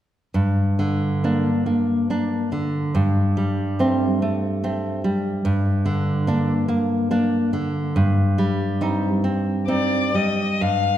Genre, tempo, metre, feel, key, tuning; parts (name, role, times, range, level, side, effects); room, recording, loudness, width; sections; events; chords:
romantic duo for violin and classical guitar; 62-74 BPM; 3/4; rubato; G minor; A4 = 442 Hz
nylon-string guitar; accompaniment; 0.3-11.0 s; G2 to Eb4; -19 LUFS; equal
rich violin; melody; 9.7-11.0 s; D5 to F5; -21 LUFS; left 6 dB
wet concert hall reverb, RT60 2.1 s; recorded in a church or concert hall; -19 LUFS; side -11 dB against mid
0.3-10.6 A section
0.3 Gm; 3.0 Gsus24; 5.5 Gm; 8.0 Cm/G